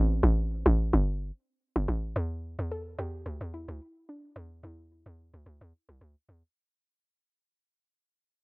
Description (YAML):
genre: amapiano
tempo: 109 BPM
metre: 4/4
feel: swing 55% on 16ths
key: unclear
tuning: A4 = 438 Hz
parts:
  - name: soft round pluck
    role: melody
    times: 0.0-6.2 s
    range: C4 to A4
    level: -42 LUFS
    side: right 2 dB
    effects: chorus, tape echo
  - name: tight log drum bass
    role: bass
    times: 0.0-6.4 s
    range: G1 to E2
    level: -27 LUFS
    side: equal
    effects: none
room: digital ambience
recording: worn, warbling old tape, cassette tape, warbly pitch drift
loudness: -27 LUFS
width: side -30 dB against mid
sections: 0.0-6.6 A section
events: drop 0.0-6.6; fade-out 0.0-6.6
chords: 0.0 Am7; 2.2 Em7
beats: 0.51 1.06 1.61 | 2.16 2.71 3.26 3.81 | 4.36 4.91 5.46 6.01